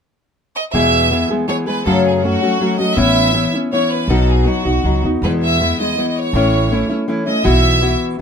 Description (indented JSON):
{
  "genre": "mexican folk, mariachi",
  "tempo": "162 BPM",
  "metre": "3/4",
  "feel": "rubato",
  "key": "E major",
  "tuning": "A4 = 443 Hz",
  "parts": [
    { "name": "bright studio violin section", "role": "melody", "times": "0.6-8.0 s", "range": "F#4 to E5", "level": "-18 LUFS", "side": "right 1 dB", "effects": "none" },
    { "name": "nylon-string guitar", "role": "accompaniment", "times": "0.7-8.2 s", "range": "E2 to G#4", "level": "-16 LUFS", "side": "left 2 dB", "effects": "none" },
    { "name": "upright bass", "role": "bass", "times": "0.7-7.9 s", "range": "A1 to F#2", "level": "-19 LUFS", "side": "right 1 dB", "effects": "none" }
  ],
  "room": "moderate small room reverb, RT60 0.5 s",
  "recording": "minimal, uncompressed stereo recording",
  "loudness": "-13 LUFS",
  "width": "side -6 dB against mid",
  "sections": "0.7-8.2 A section",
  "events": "none",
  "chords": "0.0 N.C.; 0.7 E; 1.9 F#m; 3.0 Aadd9; 4.1 B; 5.2 E; 6.3 A; 7.5 Bsus4"
}